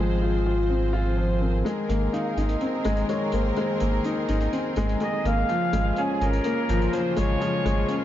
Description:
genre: piano and strings electronica.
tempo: 125 BPM.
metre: 4/4.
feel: straight.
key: Ab major.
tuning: A4 = 439 Hz.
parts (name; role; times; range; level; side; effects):
clear symphonic string section; sustained chords; 0.0-8.0 s; Db3 to C5; -32 LUFS; equal; none.
warm baby grand piano; riff; 0.0-8.0 s; F3 to F4; -26 LUFS; left 2 dB; digital delay.
round analog bass; bass; 0.0-7.8 s; Ab1; -25 LUFS; right 1 dB; none.
clear violin; melody; 1.2-8.0 s; Ab4 to F5; -29 LUFS; right 1 dB; low-pass filter.
hi-hat; drums; 1.7-8.0 s; none; -45 LUFS; equal; none.
room: light reverb, studio reverb.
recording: dark, warm production, nothing above 7.4 kHz.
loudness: -22 LUFS.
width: side -12 dB against mid.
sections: 0.0-1.7 A section; 1.7-8.0 B section.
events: filter sweep on grand piano 0.0-1.7; build-up 1.7-8.0; filter sweep on violin 1.7-8.0.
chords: 0.0 Fm/Ab; 1.7 Abadd9; 5.5 Bbm7/Ab.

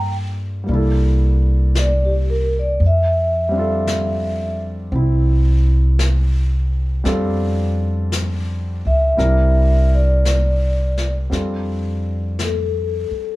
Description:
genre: jazz ballad.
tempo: 56 BPM.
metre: 4/4.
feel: swing 68% on 8ths.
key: F major.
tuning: A4 = 438 Hz.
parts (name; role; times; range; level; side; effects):
vibraphone with soft mallets; melody; 0.0-13.4 s; G4 to G5; -20 LUFS; left 1 dB; none.
warm grand piano; accompaniment; 0.0-13.4 s; G3 to Bb4; -24 LUFS; equal; none.
upright bass; bass; 0.0-13.1 s; C2 to G2; -17 LUFS; equal; none.
jazz brush drum kit; drums; 0.7-13.4 s; brushed snare drum, hi-hat, snare drum; -30 LUFS; left 2 dB; none.
room: light reverb.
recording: band playing live in one room, faint mains hum.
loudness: -16 LUFS.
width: side -18 dB against mid.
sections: 0.0-11.3 A section; 11.3-13.4 B section.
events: vibraphone solo 0.0-11.3.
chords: 0.0 Gm7; 0.7 C13; 2.8 F6; 9.2 C9; 11.3 F6.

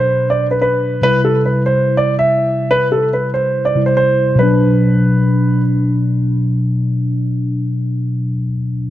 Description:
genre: hip hop, drill.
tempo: 143 BPM.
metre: 4/4.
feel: half-time.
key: B phrygian.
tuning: A4 = 441 Hz.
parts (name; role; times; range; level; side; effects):
dark concert grand piano; melody; 0.0-5.6 s; A4 to E5; -15 LUFS; right 1 dB; none.
mellow tine electric piano; accompaniment; 0.0-8.9 s; B2 to E4; -15 LUFS; left 1 dB; phaser.
room: light reverb, small room ambience.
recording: none.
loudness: -13 LUFS.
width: side -13 dB against mid.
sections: 0.0-4.4 A section; 4.4-7.7 B section.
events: none.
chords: 0.0 Bm; 1.0 C; 4.4 Bm.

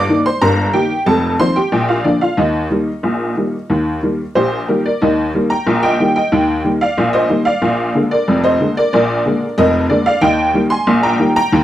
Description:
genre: ragtime piano.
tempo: 92 BPM.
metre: 2/4.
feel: straight.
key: Eb major.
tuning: A4 = 441 Hz.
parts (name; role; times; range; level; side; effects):
honky-tonk upright piano; solo; 0.0-11.6 s; F1 to D6; -12 LUFS; equal; none.
room: light reverb.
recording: close, detailed microphones.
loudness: -13 LUFS.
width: side -12 dB against mid.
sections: 0.0-5.0 A section; 5.0-11.6 B section.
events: none.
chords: 0.0 Eb; 1.1 F7; 1.7 Bb; 2.4 Eb; 7.6 Bb7; 10.2 Eb.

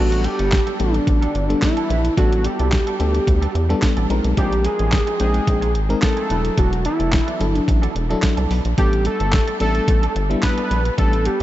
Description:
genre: early-eighties boogie funk.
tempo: 109 BPM.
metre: 4/4.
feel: straight.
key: unclear.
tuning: A4 = 439 Hz.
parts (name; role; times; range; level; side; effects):
fat analog lead; melody; 0.0-11.4 s; D4 to B4; -22 LUFS; equal; chorus, tape echo.
FM electric piano with tremolo; accompaniment; 0.0-11.4 s; F#3 to G5; -25 LUFS; left 2 dB; none.
clean electric guitar; riff; 0.0-11.4 s; F3 to B4; -30 LUFS; right 6 dB; ensemble chorus.
rubbery square bass; bass; 0.0-11.4 s; E1 to E2; -20 LUFS; equal; none.
crisp 8-bit digital drum machine; drums; 0.1-11.4 s; handclaps, hi-hat, kick drum, snare drum; -21 LUFS; equal; none.
room: light reverb.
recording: nothing above 7.8 kHz.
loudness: -16 LUFS.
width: side -14 dB against mid.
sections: 0.0-11.4 A section.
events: none.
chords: 0.0 A9sus4; 4.1 Bb9sus4; 6.3 E9sus4; 8.8 A9sus4.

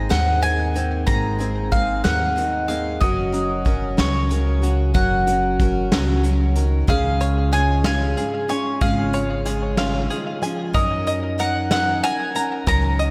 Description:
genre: indie folk with a building arrangement.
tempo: 62 BPM (dotted quarters).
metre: 6/8.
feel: straight.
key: unclear.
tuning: A4 = 440 Hz.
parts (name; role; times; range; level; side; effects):
mandolin; melody; 0.0-13.1 s; Db5 to Bb5; -26 LUFS; equal; tape echo.
fingerpicked plugged-in steel-string acoustic guitar; accompaniment; 0.0-10.8 s; Ab2 to Bb4; -29 LUFS; equal; subtle chorus.
picked steel-string acoustic guitar; accompaniment; 0.0-13.1 s; Ab2 to Bb4; -30 LUFS; equal; subtle chorus.
upright bass; bass; 0.0-13.1 s; Gb1 to Gb2; -25 LUFS; equal; none.
vintage brush drum kit; drums; 0.1-13.1 s; hi-hat, kick drum, snare drum; -27 LUFS; equal; none.
bluegrass banjo; arpeggios; 6.9-13.1 s; Ab4 to Bb5; -30 LUFS; equal; tape echo.
room: moderate lush hall reverb, RT60 2.9 s.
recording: dreamy mix soaked in reverb.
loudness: -20 LUFS.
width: mono.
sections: 0.0-6.9 A section; 6.9-13.1 B section.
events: none.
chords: 0.0 Abadd9; 3.0 Gb; 6.9 Db; 10.7 Gb6.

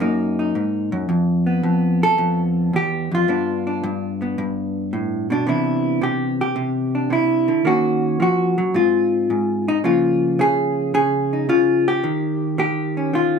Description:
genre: solo jazz.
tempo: 110 BPM.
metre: 4/4.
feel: swing 69% on 8ths.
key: unclear.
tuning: A4 = 439 Hz.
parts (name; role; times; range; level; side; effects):
vintage hollow-body jazz guitar; solo; 0.0-13.4 s; E2 to Bb4; -17 LUFS; equal; none.
room: wet club reverb, RT60 0.6 s.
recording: heard from further back in the room.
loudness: -17 LUFS.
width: side -6 dB against mid.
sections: 0.0-5.5 A section; 5.5-13.4 B section.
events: none.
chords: 0.0 F#69; 1.1 Fmaj7#11; 3.3 G7; 5.5 Cmaj9; 7.6 Ebm7; 8.7 Ab6; 9.8 Db6; 12.0 Eb9.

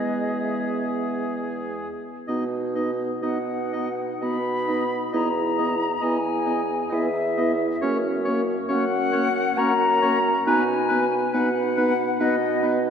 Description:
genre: classical, slow romantic movement for wind quintet.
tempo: 58-72 BPM.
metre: 3/4.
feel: rubato.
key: B major.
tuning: A4 = 440 Hz.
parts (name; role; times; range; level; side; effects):
concert flute; melody; 0.0-12.8 s; D#5 to B5; -26 LUFS; left 4 dB; none.
clear oboe; second line; 0.0-12.8 s; G#4 to D#5; -31 LUFS; left 2 dB; none.
mellow French horn; accompaniment; 0.0-12.8 s; G#3 to B3; -29 LUFS; left 1 dB; none.
mellow clarinet; accompaniment; 0.0-12.8 s; B3 to E4; -29 LUFS; right 4 dB; none.
mellow bassoon; bass; 0.0-12.9 s; E2 to B2; -27 LUFS; right 2 dB; none.
room: wet church reverb, RT60 3.5 s.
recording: none.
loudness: -21 LUFS.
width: side -7 dB against mid.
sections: 0.0-2.3 A section; 2.3-12.9 B section.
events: none.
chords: 0.0 E; 2.3 B; 5.1 Emaj7; 7.8 F#; 10.5 B.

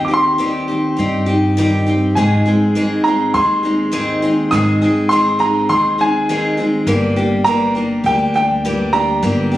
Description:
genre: acoustic folk duo or small band.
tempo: 102 BPM.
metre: 4/4.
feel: straight.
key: unclear.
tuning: A4 = 440 Hz.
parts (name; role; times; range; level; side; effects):
clear upright piano; melody; 0.0-9.6 s; G5 to Eb6; -17 LUFS; right 1 dB; plate reverb.
picked steel-string acoustic guitar; accompaniment; 0.0-9.6 s; G2 to Ab4; -17 LUFS; left 1 dB; none.
upright bass; bass; 0.0-9.6 s; G1 to G2; -20 LUFS; equal; none.
room: moderate studio reverb, RT60 0.8 s.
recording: recorded on a phone in the room, studio reverb.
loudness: -13 LUFS.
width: side -14 dB against mid.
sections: 0.0-9.6 A section.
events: none.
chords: 0.0 Cm/Eb; 2.2 Ab; 6.9 Gm.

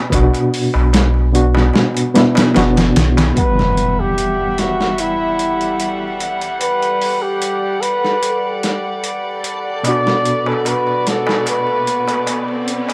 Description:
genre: trip hop.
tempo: 74 BPM.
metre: 4/4.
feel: straight.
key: E minor.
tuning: A4 = 439 Hz.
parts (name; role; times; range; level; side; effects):
barky reed electric piano; accompaniment; 0.0-12.9 s; B2 to F#5; -20 LUFS; equal; overdrive, fast tremolo, harmonic tremolo, low-pass filter.
soft dub sub bass; bass; 0.1-3.3 s; F#1 to B1; -17 LUFS; equal; none.
dusty soul sampler-style drum kit; drums; 0.1-12.9 s; hi-hat, kick drum, snare drum; -21 LUFS; equal; overdrive, high-pass filter on hats, high-pass filter on kick, high-pass filter on snare, high-pass filter on room.
darbuka; percussion; 0.1-3.3, 9.8-12.9 s; none; -28 LUFS; equal; none.
trumpet with bucket mute; melody; 3.4-12.7 s; E4 to D5; -21 LUFS; equal; dub echo.
warm studio violin section; sustained chords; 3.4-12.9 s; G3 to F#5; -26 LUFS; equal; vintage 12-bit sampler grit.
impact and riser; sound effects; 3.4-12.9 s; none; -26 LUFS; equal; none.
backwards swelling texture; texture; 5.9-12.9 s; A4; -33 LUFS; equal; built-in reverb.
room: light reverb, digital ambience.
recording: dry, gritty hardware recording, transformer saturation, vinyl crackle.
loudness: -16 LUFS.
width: mono.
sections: 0.0-3.4 A section; 3.4-12.9 B section.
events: impact 3.4-6.6.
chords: 0.0 Bm; 3.4 Emadd9; 9.8 Bm.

